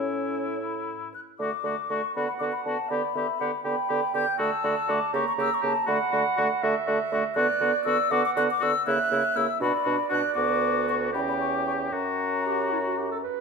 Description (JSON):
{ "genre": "quick classical-period movement for wind quintet", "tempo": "80 BPM (dotted quarters)", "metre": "6/8", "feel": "rubato", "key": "D major, B minor from 7.4 s", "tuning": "A4 = 440 Hz", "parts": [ { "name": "mellow hollow silver concert flute", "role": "melody", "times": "0.0-13.2 s", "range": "C#5 to G6", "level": "-28 LUFS", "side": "left 7 dB", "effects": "none" }, { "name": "clear oboe", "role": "second line", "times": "0.0-13.3 s", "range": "E4 to G4", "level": "-31 LUFS", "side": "left 4 dB", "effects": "none" }, { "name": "warm French horn", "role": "accompaniment", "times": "0.0-13.2 s", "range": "A3 to D4", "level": "-34 LUFS", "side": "left 1 dB", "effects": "none" }, { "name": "warm clarinet", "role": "accompaniment", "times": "0.0-13.4 s", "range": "E4 to A#5", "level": "-30 LUFS", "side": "right 10 dB", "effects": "none" }, { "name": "warm bassoon", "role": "bass", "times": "0.0-13.2 s", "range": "D2 to D3", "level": "-30 LUFS", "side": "right 3 dB", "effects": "none" } ], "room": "moderate recital hall reverb, RT60 1.7 s", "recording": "minimal, uncompressed stereo recording", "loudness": "-23 LUFS", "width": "side -5 dB against mid", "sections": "0.0-1.4 A section; 1.4-13.4 A section", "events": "none", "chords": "0.0 A; 1.4 D; 2.2 Bm/D; 2.9 G/D; 4.4 D; 5.1 C#dim7; 5.9 D; 7.4 Bm/D; 8.9 A#dim/C#; 9.6 Bm; 10.4 Bm/D; 11.1 C#dim/E; 11.9 F#", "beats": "0.60 | 1.39 2.15 | 2.91 3.65 | 4.39 5.14 | 5.88 6.63 | 7.37 8.12 | 8.87 9.62 | 10.37 11.14 | 11.93 12.72" }